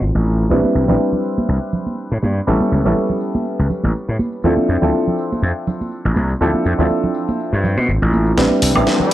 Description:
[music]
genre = filtered disco house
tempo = 122 BPM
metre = 4/4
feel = swing 55% on 16ths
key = A minor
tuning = A4 = 441 Hz
[part]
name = dark grand piano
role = accompaniment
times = 0.0-9.1 s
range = F3 to B4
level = -18 LUFS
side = equal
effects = phaser, vintage 12-bit sampler grit, low-pass filter
[part]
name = gritty slap bass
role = bass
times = 0.0-8.8 s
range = A1 to B2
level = -16 LUFS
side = equal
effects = overdrive, tube saturation, low-pass filter
[part]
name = tambourine and congas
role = percussion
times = 0.5-9.1 s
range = none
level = -23 LUFS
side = right 2 dB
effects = low-pass filter on perc
[part]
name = house drum kit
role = drums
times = 8.4-9.1 s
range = hi-hat, snare drum, woodblock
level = -19 LUFS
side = left 1 dB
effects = high-pass filter on snare, high-pass filter on hats, high-pass filter on perc, high-pass filter on room
[part]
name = riser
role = sound effects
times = 8.6-9.1 s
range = none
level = -23 LUFS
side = equal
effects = none
[sound]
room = light reverb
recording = dry, gritty hardware recording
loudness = -15 LUFS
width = side -14 dB against mid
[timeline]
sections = 0.0-8.4 A section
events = filter sweep 0.0-8.4; drum fill 8.4-9.1; riser 8.6-9.1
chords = 0.0 Dm7; 0.5 Am11 (rootless); 2.5 A7; 4.4 Dm7; 8.4 Am11

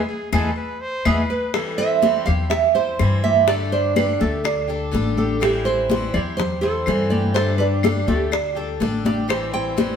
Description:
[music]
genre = latin, Cuban son and guajira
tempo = 124 BPM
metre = 4/4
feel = straight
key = A minor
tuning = A4 = 440 Hz
[part]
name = nylon-string guitar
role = melody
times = 0.0-10.0 s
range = G4 to G5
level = -22 LUFS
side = right 5 dB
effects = none
[part]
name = clear trumpet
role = second line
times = 0.0-1.5 s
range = G#4 to C5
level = -29 LUFS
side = left 1 dB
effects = none
[part]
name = upright bass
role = bass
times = 0.0-10.0 s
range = A1 to G2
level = -24 LUFS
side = left 2 dB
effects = none
[part]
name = picked steel-string acoustic guitar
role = accompaniment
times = 0.3-10.0 s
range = D3 to G4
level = -29 LUFS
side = left 4 dB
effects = none
[part]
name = Cuban tres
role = arpeggios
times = 0.3-10.0 s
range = A3 to C5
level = -26 LUFS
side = right 2 dB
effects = none
[part]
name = bongos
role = percussion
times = 0.3-10.0 s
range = none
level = -27 LUFS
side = left 5 dB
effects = none
[part]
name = claves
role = percussion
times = 0.3-9.5 s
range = none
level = -30 LUFS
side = equal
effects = none
[part]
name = congas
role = percussion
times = 0.3-10.0 s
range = none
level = -25 LUFS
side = left 2 dB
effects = none
[sound]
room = moderate stone room reverb, RT60 1.3 s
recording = band playing live in one room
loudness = -18 LUFS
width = side -7 dB against mid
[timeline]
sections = 0.0-1.5 A section; 1.5-10.0 B section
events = band accent 0.0-1.5; drum fill 0.8-1.5, 9.1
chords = 0.0 E; 1.5 Fmaj7sus2/E (rootless); 3.5 Gsus2; 5.4 Am7; 7.4 Gsus2; 9.3 Am7

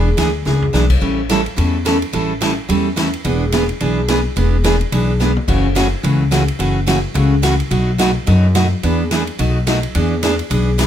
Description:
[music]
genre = country, western swing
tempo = 215 BPM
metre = 4/4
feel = swing 59% on 8ths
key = E mixolydian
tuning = A4 = 441 Hz
[part]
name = picked steel-string acoustic guitar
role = accompaniment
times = 0.0-10.9 s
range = B2 to A4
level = -17 LUFS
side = right 2 dB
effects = none
[part]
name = upright bass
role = bass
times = 0.0-10.9 s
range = E1 to F#2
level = -17 LUFS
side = left 1 dB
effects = none
[part]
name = swinging big-band drum kit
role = drums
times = 0.2-10.9 s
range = crash cymbal, hi-hat, kick drum, ride cymbal, snare drum, toms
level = -23 LUFS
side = left 1 dB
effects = none
[sound]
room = light reverb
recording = none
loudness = -14 LUFS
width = side -10 dB against mid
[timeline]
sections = 0.0-9.9 A section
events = drum fill 0.5, 5.2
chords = 0.0 E7; 1.0 A7; 3.2 E7; 5.5 F#m7; 7.7 B7; 8.8 E7; 9.4 B7; 9.9 E7

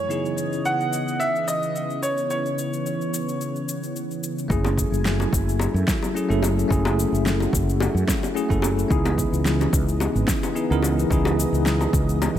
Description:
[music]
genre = sunset chillout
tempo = 109 BPM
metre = 4/4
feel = swing 54% on 16ths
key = F# minor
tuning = A4 = 441 Hz
[part]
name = clear baby grand piano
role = melody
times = 0.0-3.9 s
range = C#5 to F#5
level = -26 LUFS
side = right 1 dB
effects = ping-pong delay
[part]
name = bell-like tine electric piano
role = accompaniment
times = 0.0-12.4 s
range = C#3 to A#4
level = -27 LUFS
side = left 1 dB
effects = fast stereo tremolo, auto-pan, ping-pong delay
[part]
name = lush unison pad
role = sustained chords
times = 0.0-12.4 s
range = C#3 to G#5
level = -28 LUFS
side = right 1 dB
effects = chorus
[part]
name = electronic cabasa and snare drum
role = drums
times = 0.1-12.4 s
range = none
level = -29 LUFS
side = left 1 dB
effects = overdrive, studio reverb
[part]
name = mellow fretless electric bass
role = bass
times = 4.5-12.4 s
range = F#1 to F#2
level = -23 LUFS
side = equal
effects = none
[part]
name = electronic kick drum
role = drums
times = 4.5-12.1 s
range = none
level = -25 LUFS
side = equal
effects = overdrive, studio reverb
[part]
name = bongos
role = percussion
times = 4.6-12.3 s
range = none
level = -29 LUFS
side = left 4 dB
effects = none
[sound]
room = light reverb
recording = none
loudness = -20 LUFS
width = side -11 dB against mid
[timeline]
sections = 0.0-4.5 A section; 4.5-12.4 B section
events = none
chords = 0.1 C#m9; 4.5 F#m9; 8.9 C#m9

